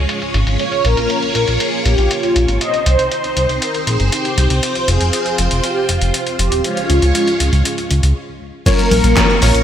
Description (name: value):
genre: italo disco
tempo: 119 BPM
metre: 4/4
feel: straight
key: unclear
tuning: A4 = 440 Hz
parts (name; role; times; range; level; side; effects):
- string machine, full ensemble; sustained chords; 0.0-9.6 s; Ab3 to Db6; -20 LUFS; equal; phaser, ensemble chorus
- chorused synth bass; bass; 0.0-9.6 s; Eb1 to Db2; -15 LUFS; equal; none
- dusty soul sampler-style drum kit; drums; 0.1-9.6 s; cabasa, congas, crash cymbal, handclaps, hi-hat, snare drum; -20 LUFS; left 1 dB; low-pass filter on hats, studio reverb, low-pass filter on cymbals, low-pass filter on perc, low-pass filter on snare, gated reverb
- mellow synth brass; melody; 0.6-9.6 s; Bb3 to Eb5; -18 LUFS; equal; chorus, ping-pong delay
- clear baby grand piano; stabs; 8.7-9.6 s; Bb3 to Db5; -20 LUFS; equal; wide subtle chorus
- electronic kick drum; drums; 8.7-9.3 s; none; -16 LUFS; equal; studio reverb
room: moderate lush hall reverb, RT60 1.9 s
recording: bright 1980s-style digital production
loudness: -13 LUFS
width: side -10 dB against mid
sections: 0.0-8.7 A section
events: break 8.2-8.7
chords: 0.0 Db; 0.6 Bbm; 2.6 Cm; 4.6 Fsus2; 6.6 Db; 8.7 Bbm